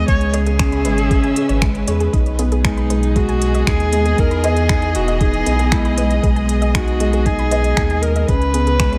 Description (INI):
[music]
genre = piano and strings electronica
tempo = 117 BPM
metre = 4/4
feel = straight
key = B major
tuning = A4 = 441 Hz
[part]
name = warm viola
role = melody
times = 0.0-9.0 s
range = D#4 to C#5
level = -25 LUFS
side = equal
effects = none
[part]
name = muted studio string section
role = sustained chords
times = 0.0-9.0 s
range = B2 to E5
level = -27 LUFS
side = equal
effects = none
[part]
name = felt-muted upright piano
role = riff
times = 0.0-9.0 s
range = G#3 to D#5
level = -24 LUFS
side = equal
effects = none
[part]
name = round analog bass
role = bass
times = 0.0-9.0 s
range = E1 to E2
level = -21 LUFS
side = equal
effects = sidechain pumping
[part]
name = soft round pluck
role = arpeggios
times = 0.1-9.0 s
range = G#4 to B5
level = -32 LUFS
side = equal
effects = none
[part]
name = electronic kick drum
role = drums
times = 0.1-8.9 s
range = none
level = -21 LUFS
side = equal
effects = none
[part]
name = organic electronic drum kit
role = drums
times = 0.1-9.0 s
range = finger snaps, hi-hat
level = -27 LUFS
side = equal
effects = none
[sound]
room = light reverb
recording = none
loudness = -17 LUFS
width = mono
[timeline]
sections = 0.0-9.0 A section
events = none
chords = 0.1 C#m7; 2.1 B6; 4.2 Emaj7; 6.2 B6; 8.3 C#7(no3)